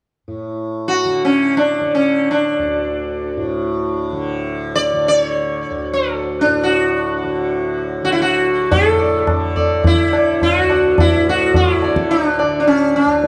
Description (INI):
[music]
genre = indian classical, Hindustani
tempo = free time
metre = none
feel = none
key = D raga hamsadhwani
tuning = A4 = 442 Hz
[part]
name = tanpura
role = drone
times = 0.3-13.3 s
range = D2 to D3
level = -25 LUFS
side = equal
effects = none
[part]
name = sitar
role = melody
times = 0.9-13.3 s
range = C#4 to D5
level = -18 LUFS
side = equal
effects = none
[part]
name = tabla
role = percussion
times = 8.7-13.3 s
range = none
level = -21 LUFS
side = equal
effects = none
[sound]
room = moderate recital hall reverb, RT60 1.7 s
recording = dark, warm production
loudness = -17 LUFS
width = mono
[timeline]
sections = 0.3-8.7 A section; 8.7-13.3 B section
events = none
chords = none